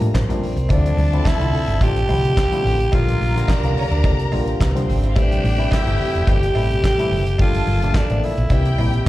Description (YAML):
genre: disco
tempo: 108 BPM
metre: 4/4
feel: straight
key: D minor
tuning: A4 = 439 Hz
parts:
  - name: warm studio string section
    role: second line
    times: 0.0-9.1 s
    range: C4 to Bb5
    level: -29 LUFS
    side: right 1 dB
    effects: slapback echo
  - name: mellow clav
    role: accompaniment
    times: 0.0-9.1 s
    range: Bb2 to F4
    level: -26 LUFS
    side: left 3 dB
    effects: phaser, slapback echo
  - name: warm French horn section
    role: sustained chords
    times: 0.0-9.1 s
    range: C3 to Bb4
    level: -31 LUFS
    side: right 1 dB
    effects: none
  - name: hollow-body short-scale fingered electric bass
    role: bass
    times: 0.0-9.1 s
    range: E1 to A2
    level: -19 LUFS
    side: equal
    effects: none
  - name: damped 70s drum kit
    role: drums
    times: 0.0-9.1 s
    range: handclaps, hi-hat, kick drum, snare drum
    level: -19 LUFS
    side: equal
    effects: none
  - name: growling tenor saxophone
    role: melody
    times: 0.1-9.1 s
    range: C4 to G4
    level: -24 LUFS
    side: equal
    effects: none
  - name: cowbell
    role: percussion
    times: 0.1-9.1 s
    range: none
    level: -38 LUFS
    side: right 4 dB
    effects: none
  - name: congas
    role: percussion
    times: 0.3-8.9 s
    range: none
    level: -31 LUFS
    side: left 2 dB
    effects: none
room: small room ambience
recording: live gig heard through the venue's PA, recital hall reverb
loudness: -16 LUFS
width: side -16 dB against mid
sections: 0.0-9.1 A section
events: none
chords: 0.0 Gm9; 0.7 Dm9; 2.9 Bb6; 5.2 Am7; 7.4 Gm9; 8.5 C7